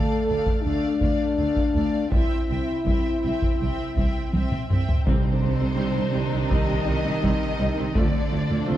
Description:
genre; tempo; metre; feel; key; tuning
cinematic, epic orchestral film score; 83 BPM; 4/4; straight; C dorian from 5.1 s; A4 = 442 Hz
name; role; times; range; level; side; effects
dark symphonic violin section; melody; 0.0-8.8 s; C5 to G5; -34 LUFS; left 5 dB; none
rich symphonic violin section; second line; 0.0-8.8 s; D4 to E5; -34 LUFS; left 2 dB; none
rich symphonic viola section; accompaniment; 0.0-8.8 s; F3 to C4; -30 LUFS; right 1 dB; none
mellow French horn section; sustained chords; 0.0-8.8 s; C4 to A4; -27 LUFS; left 2 dB; none
rich chamber cello section; bass; 0.3-8.8 s; C2 to Eb3; -30 LUFS; right 3 dB; none
rich symphonic double bass section; bass; 0.3-8.8 s; C2 to D2; -30 LUFS; right 2 dB; none
solo taiko drums; drums; 0.5-8.8 s; none; -25 LUFS; equal; none
clear trombone section; sustained chords; 5.1-8.8 s; Eb3 to A3; -35 LUFS; right 4 dB; none
mellow tuba; bass; 5.1-8.8 s; C2 to D2; -32 LUFS; right 2 dB; none
timpani; percussion; 5.1-6.1 s; C3; -30 LUFS; right 1 dB; none
room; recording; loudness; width
moderate scoring stage reverb, RT60 1.6 s; dark, warm production; -21 LUFS; side -12 dB against mid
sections
0.0-5.1 A section; 5.1-8.8 B section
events
drum fill 4.3-5.1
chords
0.0 Dm; 2.1 C; 5.1 Cmadd9; 8.0 Dm

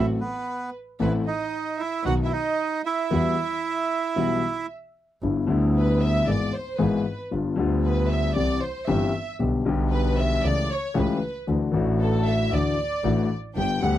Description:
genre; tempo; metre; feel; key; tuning
tango; 115 BPM; 4/4; rubato; E harmonic minor, G major from 5.2 s; A4 = 441 Hz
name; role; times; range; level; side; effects
bandoneon; melody; 0.0-4.7 s; B3 to F#4; -26 LUFS; right 6 dB; none
warm studio violin section; second line; 0.0-14.0 s; A4 to G5; -30 LUFS; right 1 dB; none
dark baby grand piano; accompaniment; 0.0-14.0 s; G1 to A4; -24 LUFS; left 4 dB; none
warm studio string section; stabs; 0.0-4.4, 13.6-14.0 s; G3 to G4; -33 LUFS; right 7 dB; none
clear double bass; bass; 0.0-14.0 s; G1 to E2; -26 LUFS; right 2 dB; none
room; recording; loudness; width
little or no reverb; dry, close 1970s-style studio recording; -22 LUFS; side -12 dB against mid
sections
0.0-5.2 A section; 5.2-14.0 B section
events
break 4.2-5.2; violin section solo 5.2-14.0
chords
0.0 F#dim/A; 1.0 Am; 2.1 B; 3.1 Emadd9; 5.2 G6; 6.3 E/G#; 7.3 G7; 8.4 C; 9.4 G/B; 10.4 A7/C#; 11.5 Dadd9

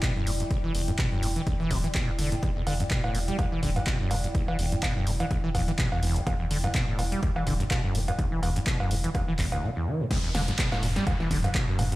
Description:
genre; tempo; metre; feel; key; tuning
acid house; 125 BPM; 4/4; swing 56% on 16ths; E minor; A4 = 440 Hz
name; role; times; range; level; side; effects
acid bass, saw; riff; 0.0-12.0 s; E1 to G3; -29 LUFS; equal; overdrive, wide subtle chorus, digital delay
electronic kick drum; drums; 0.0-11.7 s; none; -29 LUFS; equal; overdrive
punchy analog drum machine; drums; 0.0-12.0 s; cowbell, crash cymbal, handclaps, hi-hat, snare drum, toms; -32 LUFS; right 1 dB; overdrive
warbly tape-like pad; texture; 0.0-9.6 s; E4 to G5; -38 LUFS; right 1 dB; chorus, built-in reverb, sidechain pumping
saturated sub bass; bass; 0.3-12.0 s; D1 to E1; -30 LUFS; equal; sidechain pumping
downlifter; sound effects; 10.1-12.0 s; none; -36 LUFS; equal; none
room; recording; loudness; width
little or no reverb; played on a big sound system in a bare room, stone room reverb; -24 LUFS; side -18 dB against mid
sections
0.0-10.1 A section; 10.1-12.0 B section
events
drop 10.1-12.0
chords
0.0 Em7; 10.1 E7(no3)

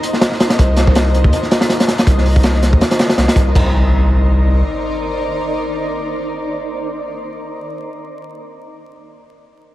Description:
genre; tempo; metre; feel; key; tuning
drum and bass, jungle; 162 BPM; 4/4; swing 54% on 16ths; C minor; A4 = 440 Hz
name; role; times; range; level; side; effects
granular cloud pad; sustained chords; 0.0-7.3 s; Eb4 to Eb5; -21 LUFS; equal; built-in reverb, vintage 12-bit sampler grit
crunchy breakbeat drum kit; drums; 0.0-3.6 s; crash cymbal, hi-hat, kick drum, snare drum; -14 LUFS; equal; dub echo
dusty soul sampler-style drum kit; drums; 0.0-3.5 s; hi-hat, shaker, snare drum; -33 LUFS; right 1 dB; none
saturated sub bass; bass; 0.6-4.6 s; C2 to Eb2; -14 LUFS; equal; none
impact; sound effects; 3.8-7.4 s; none; -25 LUFS; equal; none
room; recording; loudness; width
light reverb; echo-heavy mix, vinyl crackle; -12 LUFS; side -15 dB against mid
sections
0.0-3.5 A section; 3.5-6.5 B section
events
none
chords
0.0 Cm7; 3.5 Cm9

